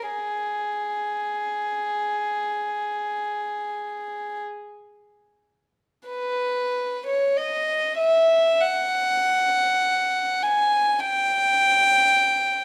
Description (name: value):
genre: classical, free, expressive piece for unaccompanied violin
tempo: free time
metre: none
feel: none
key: unclear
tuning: A4 = 440 Hz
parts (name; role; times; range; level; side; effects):
- clear violin; solo; 0.0-12.6 s; G#4 to G#5; -23 LUFS; equal; none
room: moderate recital hall reverb, RT60 1.4 s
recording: recorded in a church or concert hall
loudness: -23 LUFS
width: mono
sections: 0.0-6.1 A section; 6.1-12.6 B section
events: none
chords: none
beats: free time